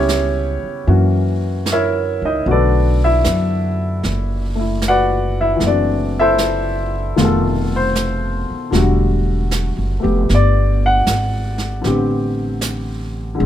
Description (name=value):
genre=jazz ballad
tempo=77 BPM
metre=4/4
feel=swing 69% on 8ths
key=unclear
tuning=A4 = 440 Hz
part: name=warm baby grand piano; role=accompaniment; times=0.0-13.5 s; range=B2 to F#5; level=-18 LUFS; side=left 2 dB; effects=none
part: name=upright bass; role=bass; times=0.0-13.5 s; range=E1 to F#2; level=-18 LUFS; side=right 1 dB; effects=none
part: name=jazz brush drum kit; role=drums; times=0.1-13.5 s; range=brushed snare drum, hi-hat, snare drum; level=-25 LUFS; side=right 4 dB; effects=none
room=light reverb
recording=none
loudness=-15 LUFS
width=side -11 dB against mid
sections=0.0-13.5 A section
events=none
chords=0.0 C#m7b5; 0.9 F#7; 2.5 Bm7; 5.6 F#m7b5; 7.2 F7#11; 8.7 Em11; 11.8 Am11